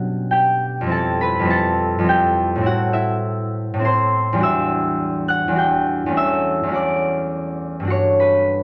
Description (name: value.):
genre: classical, solo harp piece.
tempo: 103 BPM.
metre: 3/4.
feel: uneven beats, rubato.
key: unclear.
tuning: A4 = 440 Hz.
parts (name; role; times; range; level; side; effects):
concert harp; solo; 0.0-8.6 s; E2 to G6; -19 LUFS; equal; none.
room: moderate large studio reverb, RT60 0.8 s.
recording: none.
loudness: -19 LUFS.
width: mono.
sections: 0.0-8.6 A section.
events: none.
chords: 0.0 Bmadd9; 0.9 Fmaj9; 2.6 Amadd9; 4.4 Em9; 6.1 E13sus4; 7.9 Gmaj9.